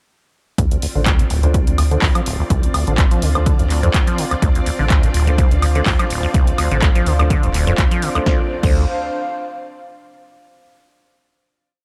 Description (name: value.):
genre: acid house.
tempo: 125 BPM.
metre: 4/4.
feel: swing 54% on 16ths.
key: D minor.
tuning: A4 = 441 Hz.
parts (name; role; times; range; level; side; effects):
string machine, full ensemble; sustained chords; 0.6-8.5 s; C4 to D5; -31 LUFS; equal; ensemble chorus, sidechain pumping.
liquid acid bass; riff; 0.6-8.9 s; D1 to F3; -23 LUFS; equal; chorus, tube saturation, sidechain pumping, analog delay.
round analog bass; bass; 0.6-8.9 s; D1 to D2; -21 LUFS; equal; sidechain pumping.
electronic kick drum; drums; 0.6-8.7 s; none; -19 LUFS; equal; overdrive.
punchy analog drum machine; drums; 0.6-8.7 s; crash cymbal, handclaps, hi-hat, snare drum, woodblock; -26 LUFS; equal; overdrive.
airy breathy pad; texture; 0.6-10.1 s; D4 to F5; -31 LUFS; equal; chorus, sidechain pumping.
dark baby grand piano; stabs; 1.0-8.8 s; A3 to C5; -30 LUFS; equal; analog delay.
room: light reverb, digital ambience.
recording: echo-heavy mix.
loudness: -17 LUFS.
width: mono.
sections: 0.6-8.3 groove; 8.3-10.2 final chord.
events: fade-in on analog synth pad 0.6-8.3; filter sweep on acid bass 0.6-8.3.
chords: 0.6 Dm7.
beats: | 0.58 1.06 1.54 2.02 | 2.50 2.98 3.46 3.94 | 4.42 4.90 5.38 5.86 | 6.34 6.82 7.30 7.78 | 8.26 8.74 9.22 9.70.